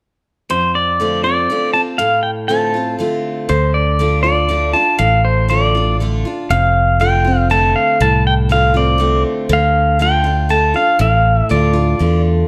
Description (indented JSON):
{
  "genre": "honky-tonk and classic country",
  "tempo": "120 BPM",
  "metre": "3/4",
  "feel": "straight",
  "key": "F major",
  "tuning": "A4 = 438 Hz",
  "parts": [
    { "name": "pedal steel guitar", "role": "melody", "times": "0.5-12.2 s", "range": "C5 to A5", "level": "-17 LUFS", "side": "equal", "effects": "none" },
    { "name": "picked steel-string acoustic guitar", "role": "accompaniment", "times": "0.5-12.5 s", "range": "F2 to F4", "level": "-22 LUFS", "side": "equal", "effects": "none" },
    { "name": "fingered electric bass", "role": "bass", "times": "3.5-12.4 s", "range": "F1 to E2", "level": "-18 LUFS", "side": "equal", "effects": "none" }
  ],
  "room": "moderate large studio reverb, RT60 1.1 s",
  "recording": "none",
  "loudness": "-15 LUFS",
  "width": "mono",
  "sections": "0.5-6.5 A section; 6.5-12.5 B section",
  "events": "none",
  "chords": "0.5 F6; 3.5 Dm; 6.5 F6; 9.5 Dm",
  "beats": "| 0.50 1.00 1.50 | 2.00 2.50 3.00 | 3.50 4.00 4.50 | 5.00 5.50 6.00 | 6.50 7.00 7.50 | 8.00 8.50 9.00 | 9.50 10.00 10.50 | 11.00 11.50 12.00"
}